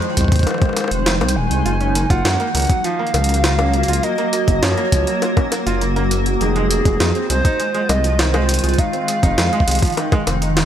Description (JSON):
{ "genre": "IDM", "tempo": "101 BPM", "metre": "4/4", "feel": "straight", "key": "F phrygian", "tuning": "A4 = 440 Hz", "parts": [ { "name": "warbly nostalgic lead", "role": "melody", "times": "0.0-10.6 s", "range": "Ab4 to Ab5", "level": "-22 LUFS", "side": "equal", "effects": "chorus, digital delay" }, { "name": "granular cloud pad", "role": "sustained chords", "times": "0.0-10.7 s", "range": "Eb3 to Gb4", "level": "-23 LUFS", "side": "equal", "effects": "built-in reverb, analog chorus, sidechain pumping" }, { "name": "jungle sampler-style drum kit", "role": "drums", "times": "0.0-10.7 s", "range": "bongos, hi-hat, snare drum", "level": "-22 LUFS", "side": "left 1 dB", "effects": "overdrive, studio reverb" }, { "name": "dark detuned saw bass", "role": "bass", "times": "0.2-10.7 s", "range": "Eb1 to Gb2", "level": "-19 LUFS", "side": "equal", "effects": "none" }, { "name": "electronic kick drum", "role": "drums", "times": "0.2-10.2 s", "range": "none", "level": "-16 LUFS", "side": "equal", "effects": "overdrive, studio reverb" }, { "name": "felt-muted upright piano", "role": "arpeggios", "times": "1.7-10.6 s", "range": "Eb3 to F4", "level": "-25 LUFS", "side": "right 3 dB", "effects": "vintage 12-bit sampler grit, ping-pong delay" } ], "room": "light reverb", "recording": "bright 1980s-style digital production", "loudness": "-15 LUFS", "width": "side -10 dB against mid", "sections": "0.0-10.7 A section", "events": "none", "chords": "0.0 Fm7; 1.7 Gbmaj7; 6.4 Fm7" }